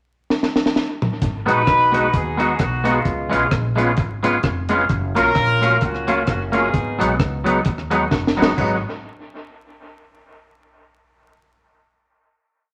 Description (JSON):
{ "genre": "ska", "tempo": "130 BPM", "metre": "4/4", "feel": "swing 57% on 8ths", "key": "G# dorian", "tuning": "A4 = 440 Hz", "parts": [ { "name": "deep reggae drum kit", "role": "drums", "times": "0.3-8.7 s", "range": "crash cymbal, hi-hat, kick drum, rim click, snare drum, toms", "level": "-23 LUFS", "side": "equal", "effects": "dub echo" }, { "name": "upright bass", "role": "bass", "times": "1.2-8.8 s", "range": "E#1 to D#2", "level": "-28 LUFS", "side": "equal", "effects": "none" }, { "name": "warm horn section", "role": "melody", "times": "1.5-7.4 s", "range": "G#3 to B4", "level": "-23 LUFS", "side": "equal", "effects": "none" }, { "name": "clean electric guitar", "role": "accompaniment", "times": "1.5-8.7 s", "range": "F#3 to F#4", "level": "-24 LUFS", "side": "equal", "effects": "none" }, { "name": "percussive tonewheel organ", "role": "stabs", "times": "1.5-8.8 s", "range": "F#3 to F#4", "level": "-26 LUFS", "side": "equal", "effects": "overdrive, fast rotary speaker" } ], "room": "wet studio reverb, RT60 0.9 s", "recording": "vinyl crackle", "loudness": "-19 LUFS", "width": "mono", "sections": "0.0-1.2 pickup bar; 1.2-8.6 A section; 8.6-10.4 final chord", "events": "drum fill 0.3-1.2, 8.1-8.6", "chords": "0.0 N.C.; 1.2 G#m7; 3.1 C#7; 4.9 F#maj7; 6.7 G#m7", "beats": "0.30 0.76 | 1.22 1.68 2.14 2.60 | 3.06 3.52 3.98 4.44 | 4.90 5.36 5.82 6.28 | 6.74 7.20 7.66 8.12 | 8.58" }